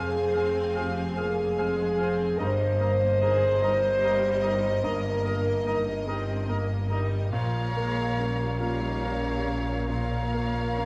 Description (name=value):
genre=cinematic, emotional film score for orchestra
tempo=48 BPM (dotted quarters)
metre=6/8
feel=rubato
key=unclear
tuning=A4 = 445 Hz
part: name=rich studio violin section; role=melody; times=0.0-10.9 s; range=Eb5 to Ab5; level=-43 LUFS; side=equal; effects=none
part: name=clear oboe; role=second line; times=0.0-10.9 s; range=Db5 to F5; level=-41 LUFS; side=equal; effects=none
part: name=hollow concert flute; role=second line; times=0.0-10.9 s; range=Ab5 to Bb5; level=-42 LUFS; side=equal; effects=none
part: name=rich studio violin section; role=second line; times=0.0-10.9 s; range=Bb4 to F5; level=-43 LUFS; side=equal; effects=none
part: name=warm clarinet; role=second line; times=0.0-10.9 s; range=Bb4 to C5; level=-42 LUFS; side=equal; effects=none
part: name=warm grand piano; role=accompaniment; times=0.0-10.9 s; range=F2 to Bb4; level=-38 LUFS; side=equal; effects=none
part: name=warm studio viola section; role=accompaniment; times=0.0-10.9 s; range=F3 to Ab4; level=-40 LUFS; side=equal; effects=none
part: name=mellow French horn section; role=sustained chords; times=0.0-10.9 s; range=Bb3 to C5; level=-30 LUFS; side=equal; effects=none
part: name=rich studio cello section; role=bass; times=0.0-10.9 s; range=F2 to Bb2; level=-34 LUFS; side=equal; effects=none
part: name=rich studio double bass section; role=bass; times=0.0-10.9 s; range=F1 to Bb1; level=-35 LUFS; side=equal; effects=none
room=moderate scoring stage reverb, RT60 1.9 s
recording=none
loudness=-26 LUFS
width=mono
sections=0.0-10.9 A section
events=none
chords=0.0 Fm; 2.4 Eb/G; 7.3 Bbm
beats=1.18 | 2.40 3.63 | 4.86 6.09 | 7.34 8.60 | 9.89